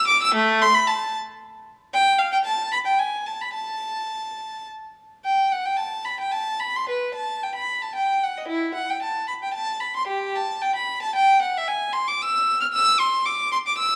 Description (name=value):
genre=classical, baroque-style suite movement for unaccompanied violin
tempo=105-117 BPM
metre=3/4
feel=rubato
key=A minor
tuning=A4 = 440 Hz
part: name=rich violin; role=solo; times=0.0-14.0 s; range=A3 to F6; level=-23 LUFS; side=equal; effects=none
room=moderate recital hall reverb, RT60 1.7 s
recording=small room ambience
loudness=-23 LUFS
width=mono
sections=0.0-5.3 A section; 5.3-14.0 A section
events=none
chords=none